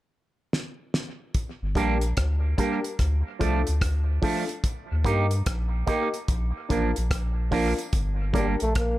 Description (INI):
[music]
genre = roots reggae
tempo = 73 BPM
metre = 4/4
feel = swing 63% on 16ths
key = G minor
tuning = A4 = 440 Hz
[part]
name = cloth-damped thuddy drum kit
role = drums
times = 0.5-9.0 s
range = hi-hat, kick drum, rim click, snare drum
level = -27 LUFS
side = equal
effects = none
[part]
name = soft dub sub bass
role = bass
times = 1.6-9.0 s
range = G1 to G2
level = -25 LUFS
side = equal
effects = none
[part]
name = electric guitar with an envelope filter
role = accompaniment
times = 1.8-8.5 s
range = F3 to G4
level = -30 LUFS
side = right 6 dB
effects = dub echo
[part]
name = dark upright piano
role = stabs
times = 1.8-8.6 s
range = D4 to Bb4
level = -31 LUFS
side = left 4 dB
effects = none
[part]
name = clear trombone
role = melody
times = 8.4-9.0 s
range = G3 to Bb3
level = -27 LUFS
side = equal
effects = none
[sound]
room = light reverb, small room reverb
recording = none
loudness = -23 LUFS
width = side -16 dB against mid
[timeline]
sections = 0.0-1.3 A section; 1.3-7.9 B section; 7.9-9.0 C section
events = drum fill 0.5-1.3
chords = 0.0 N.C.; 1.3 Gm; 3.0 Dm; 4.6 Eb; 6.3 Bb; 7.9 Gm